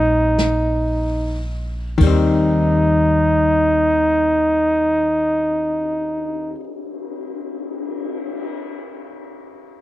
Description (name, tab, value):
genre	jazz ballad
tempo	36 BPM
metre	4/4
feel	swing 68% on 8ths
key	Eb major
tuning	A4 = 441 Hz
part	warm flugelhorn	melody	0.0-6.6 s	Eb4	-17 LUFS	equal	none
part	archtop guitar, miked and amplified	accompaniment	0.0-6.6 s	Eb3 to C4	-22 LUFS	left 5 dB	none
part	upright bass	bass	0.0-6.5 s	Bb1 to Eb2	-22 LUFS	right 1 dB	none
part	jazz brush drum kit	drums	0.4-8.4 s	brushed snare drum, crash cymbal, cymbal swell, hi-hat, kick drum, snare drum	-29 LUFS	left 2 dB	none
room	studio ambience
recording	none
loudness	-16 LUFS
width	side -14 dB against mid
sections	0.0-2.0 A section; 2.0-8.8 B section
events	slowing down 0.0-2.0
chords	0.0 Eb6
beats	0.38 | 2.01 3.70 5.39 7.09